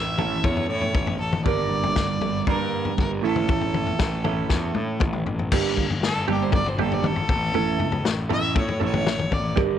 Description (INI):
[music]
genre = psychedelic rock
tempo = 118 BPM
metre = 4/4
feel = straight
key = unclear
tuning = A4 = 444 Hz
[part]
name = clear fiddle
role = melody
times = 0.0-9.6 s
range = G4 to E5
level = -28 LUFS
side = left 2 dB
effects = slapback echo
[part]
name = semi-hollow electric guitar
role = riff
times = 0.0-9.8 s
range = G2 to Bb4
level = -26 LUFS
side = right 12 dB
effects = flanger
[part]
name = fuzz picked electric bass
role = bass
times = 0.0-9.8 s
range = G1 to A2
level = -28 LUFS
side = left 1 dB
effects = overdrive
[part]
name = vintage drum kit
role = drums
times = 0.2-9.7 s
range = crash cymbal, kick drum, snare drum, toms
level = -25 LUFS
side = left 3 dB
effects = none
[sound]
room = light reverb, small room ambience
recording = 1960s-style stereo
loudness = -21 LUFS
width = side -10 dB against mid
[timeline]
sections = 0.0-5.5 A section; 5.5-9.8 B section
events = drum fill 4.5-5.5; fiddle solo 5.5-9.8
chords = 0.0 A; 1.5 Gm; 3.2 A; 5.5 Gm; 7.3 A